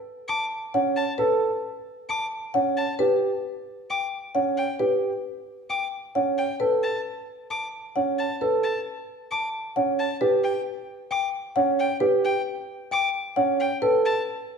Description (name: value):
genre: classical, minimalist pattern music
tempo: 133 BPM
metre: 4/4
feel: straight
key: B minor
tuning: A4 = 442 Hz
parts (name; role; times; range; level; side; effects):
- marimba with soft mallets; melody; 0.3-14.1 s; B4 to A5; -27 LUFS; left 5 dB; none
- rich violin; arpeggios; 0.3-14.2 s; G5 to D6; -31 LUFS; left 2 dB; none
- dark baby grand piano; arpeggios; 0.7-14.1 s; C#4 to A4; -25 LUFS; right 7 dB; none
room: wet recital hall reverb, RT60 1.6 s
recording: dark, warm production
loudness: -22 LUFS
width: side -6 dB against mid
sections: 0.0-14.6 A section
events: none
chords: 0.0 Bm7 (rootless); 3.0 G5; 6.6 N.C.; 13.8 B7(no3)